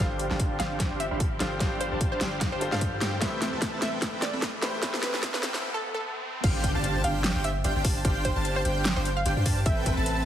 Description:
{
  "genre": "future bass",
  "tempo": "149 BPM",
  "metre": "4/4",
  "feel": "swing 55% on 16ths, half-time",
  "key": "unclear",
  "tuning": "A4 = 440 Hz",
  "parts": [
    { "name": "wide unison pluck", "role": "melody", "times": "0.0-9.9 s", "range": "A4 to F5", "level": "-34 LUFS", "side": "right 1 dB", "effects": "sidechain pumping, dub echo" },
    { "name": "bright baby grand piano", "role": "accompaniment", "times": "0.0-6.5 s", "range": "G3 to C5", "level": "-36 LUFS", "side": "left 2 dB", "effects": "sidechain pumping, dub echo" },
    { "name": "bright studio string section", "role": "sustained chords", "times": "0.0-5.6 s", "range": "C3 to G4", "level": "-42 LUFS", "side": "left 2 dB", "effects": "none" },
    { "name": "dense compressed supersaw", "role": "riff", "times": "0.0-10.2 s", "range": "C4 to B5", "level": "-32 LUFS", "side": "right 1 dB", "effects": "sidechain pumping, low-pass filter" },
    { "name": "long sustained 808-style bass", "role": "bass", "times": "0.0-10.2 s", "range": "G1 to G2", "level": "-31 LUFS", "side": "equal", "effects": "sidechain pumping" },
    { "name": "riser and impact", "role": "sound effects", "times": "0.0-8.0 s", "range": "none", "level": "-39 LUFS", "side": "equal", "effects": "none" },
    { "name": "dubstep drum kit", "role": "drums", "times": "0.2-10.2 s", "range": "crash cymbal, hi-hat, snare drum", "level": "-31 LUFS", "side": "equal", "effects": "none" },
    { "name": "electronic kick drum", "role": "drums", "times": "0.4-9.9 s", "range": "none", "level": "-28 LUFS", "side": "equal", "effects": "none" },
    { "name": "airy dreamy lead", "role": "arpeggios", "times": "6.4-10.2 s", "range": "G5 to A5", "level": "-35 LUFS", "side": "equal", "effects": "chorus, sidechain pumping" }
  ],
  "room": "moderate lush hall reverb, RT60 1.7 s",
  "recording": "heavily compressed radio sound, high-pass filter",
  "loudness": "-25 LUFS",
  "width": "side -10 dB against mid",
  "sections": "0.0-6.4 A section; 6.4-10.3 B section",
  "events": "build-up 0.0-6.4; drum fill 0.0-5.6; filter sweep on supersaw synth 0.0-6.4; filter sweep 0.0-6.4; break 5.6-6.4; drop 6.4-10.3; impact 6.4-8.0",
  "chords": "0.0 G7sus4; 3.2 Am9; 6.4 G7sus4; 9.7 Am9"
}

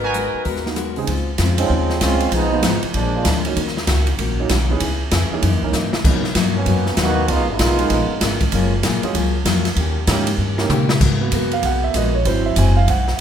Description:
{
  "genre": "jazz, big band swing",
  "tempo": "193 BPM",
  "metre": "4/4",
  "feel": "swing 63% on 8ths",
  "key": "G# minor",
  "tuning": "A4 = 440 Hz",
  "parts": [
    { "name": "clear saxophone section", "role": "melody", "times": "0.0-0.7 s", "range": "F#3 to B4", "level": "-25 LUFS", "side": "left 4 dB", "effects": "none" },
    { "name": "picked steel-string acoustic guitar", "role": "accompaniment", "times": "0.0-13.1 s", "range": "F#2 to A#4", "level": "-24 LUFS", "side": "left 6 dB", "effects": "none" },
    { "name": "upright bass", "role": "bass", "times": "0.0-13.2 s", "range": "F#1 to B2", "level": "-20 LUFS", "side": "equal", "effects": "none" },
    { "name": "swinging big-band drum kit", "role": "drums", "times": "0.1-13.1 s", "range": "crash cymbal, hi-hat, kick drum, ride cymbal, rim click, snare drum, toms", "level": "-21 LUFS", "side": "equal", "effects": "none" },
    { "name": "warm concert grand piano", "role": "accompaniment", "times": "0.6-13.2 s", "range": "C#3 to G#5", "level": "-24 LUFS", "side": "right 5 dB", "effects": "none" },
    { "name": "bright trombone section", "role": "second line", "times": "1.6-3.4, 6.6-8.4 s", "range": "C#3 to F#4", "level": "-21 LUFS", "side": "right 3 dB", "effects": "none" }
  ],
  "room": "light reverb",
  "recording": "minimal, uncompressed stereo recording",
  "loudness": "-16 LUFS",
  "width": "side -9 dB against mid",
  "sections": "0.0-1.1 A section; 1.1-11.0 B section; 11.0-13.2 C section",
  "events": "trombone section solo 1.1-11.0; drum fill 5.7-6.0, 10.4-11.0; grand piano solo 11.0-13.2",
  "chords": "0.0 G#m9; 1.1 C#maj7; 2.3 Fm7b5; 2.9 A#7; 3.6 D#m7; 4.8 C#m7; 5.4 F#13; 6.0 Bmaj7; 7.3 C#13; 8.5 F#maj9; 9.8 D#7; 11.0 G#m9; 12.3 G#7alt"
}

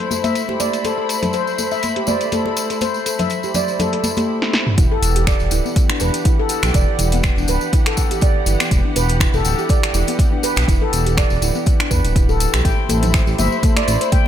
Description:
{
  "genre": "afro house",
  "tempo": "122 BPM",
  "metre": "4/4",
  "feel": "swing 54% on 16ths",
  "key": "E minor",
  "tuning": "A4 = 440 Hz",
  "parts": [
    { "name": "muted studio string section", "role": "sustained chords", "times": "0.0-14.3 s", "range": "E3 to B5", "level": "-26 LUFS", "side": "equal", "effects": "sidechain pumping" },
    { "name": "handpan", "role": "arpeggios", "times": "0.1-14.2 s", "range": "B3 to G5", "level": "-21 LUFS", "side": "equal", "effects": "sidechain pumping, ping-pong delay" },
    { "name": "congas", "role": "percussion", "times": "0.1-4.3, 12.7-14.3 s", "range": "none", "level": "-24 LUFS", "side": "left 1 dB", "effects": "none" },
    { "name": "tambourine", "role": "percussion", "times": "0.1-14.2 s", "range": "none", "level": "-28 LUFS", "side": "left 3 dB", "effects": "none" },
    { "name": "deep house drum kit", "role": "drums", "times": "0.2-14.2 s", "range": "finger snaps, hi-hat, snare drum, toms", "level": "-23 LUFS", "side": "equal", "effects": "overdrive, low-pass filter on hats, low-pass filter on snare, low-pass filter on toms, low-pass filter on room" },
    { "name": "smooth gliding synth bass", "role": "bass", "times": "4.8-14.0 s", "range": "D1 to E2", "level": "-19 LUFS", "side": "equal", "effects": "sidechain pumping" },
    { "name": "electronic kick drum", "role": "drums", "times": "4.8-14.2 s", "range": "none", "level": "-16 LUFS", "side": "equal", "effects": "overdrive" }
  ],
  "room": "small room ambience",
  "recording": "none",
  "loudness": "-15 LUFS",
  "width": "side -10 dB against mid",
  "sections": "0.0-4.8 A section; 4.8-14.3 B section",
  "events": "filter sweep on handpan 0.0-4.8; drum fill 4.4-4.8; drop 4.8-14.3",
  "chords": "0.0 Amadd9; 4.8 Em7; 12.6 Amadd9"
}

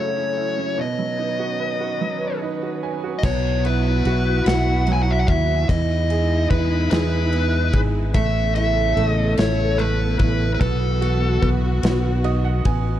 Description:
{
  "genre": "six-eight pop ballad",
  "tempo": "49 BPM (dotted quarters)",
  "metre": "6/8",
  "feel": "straight",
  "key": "unclear",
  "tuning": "A4 = 439 Hz",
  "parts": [
    { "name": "dark smooth lead guitar", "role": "melody", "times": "0.0-11.5 s", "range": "A4 to G#5", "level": "-25 LUFS", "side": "left 1 dB", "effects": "overdrive, analog delay" },
    { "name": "bright grand piano", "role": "accompaniment", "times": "0.0-13.0 s", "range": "F#2 to G#5", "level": "-26 LUFS", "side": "right 7 dB", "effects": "none" },
    { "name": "warm studio string section", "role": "sustained chords", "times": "0.0-13.0 s", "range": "C#3 to B4", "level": "-27 LUFS", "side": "left 2 dB", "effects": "none" },
    { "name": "fingered electric bass", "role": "bass", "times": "3.2-13.0 s", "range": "G#1 to E2", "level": "-20 LUFS", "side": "equal", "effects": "none" },
    { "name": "modern studio drum kit", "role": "drums", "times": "3.2-12.8 s", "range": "crash cymbal, kick drum, ride cymbal, snare drum", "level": "-24 LUFS", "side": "left 1 dB", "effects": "none" }
  ],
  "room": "small room ambience",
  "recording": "dark, warm production",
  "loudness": "-18 LUFS",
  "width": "side -12 dB against mid",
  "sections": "0.0-3.2 A section; 3.2-13.0 B section",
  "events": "grand piano fill 2.0-3.2, 11.8-13.0",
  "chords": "0.0 F#m7; 0.8 Badd9; 3.2 Bsus4; 5.7 Emaj7; 8.2 Aadd9; 10.6 Bsus4; 11.8 B"
}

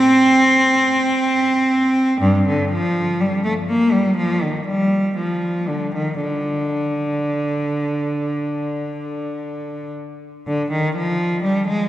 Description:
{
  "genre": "classical, baroque-style suite movement for unaccompanied cello",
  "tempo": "55-63 BPM",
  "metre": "4/4",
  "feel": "rubato",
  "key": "unclear",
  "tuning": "A4 = 439 Hz",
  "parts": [
    { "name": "rich cello", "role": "solo", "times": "0.0-11.9 s", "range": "G2 to C4", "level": "-17 LUFS", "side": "equal", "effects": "none" }
  ],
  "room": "wet cathedral reverb, RT60 4.5 s",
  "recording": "heard from further back in the room",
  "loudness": "-17 LUFS",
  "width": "side -13 dB against mid",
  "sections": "0.0-10.5 A section; 10.5-11.9 B section",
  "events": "none",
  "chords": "none"
}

